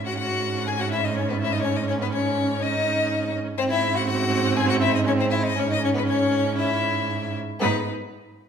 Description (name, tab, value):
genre	quick classical-period movement for string quartet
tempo	121 BPM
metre	4/4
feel	straight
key	unclear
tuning	A4 = 443 Hz
part	rich violin	melody	0.0-7.9 s	B4 to G#5	-26 LUFS	left 8 dB	none
part	clear viola	accompaniment	0.0-7.9 s	B#3 to D#4	-28 LUFS	right 3 dB	none
part	clear cello	bass	0.0-7.9 s	G#2	-27 LUFS	right 5 dB	none
part	clear violin	second line	0.1-7.9 s	B3 to G#4	-26 LUFS	left 1 dB	none
room	wet recital hall reverb, RT60 1.5 s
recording	none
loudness	-21 LUFS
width	side -7 dB against mid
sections	0.0-7.6 A section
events	none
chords	0.0 C#5/G#; 3.6 G#7; 5.6 C#m/G#; 7.6 G#5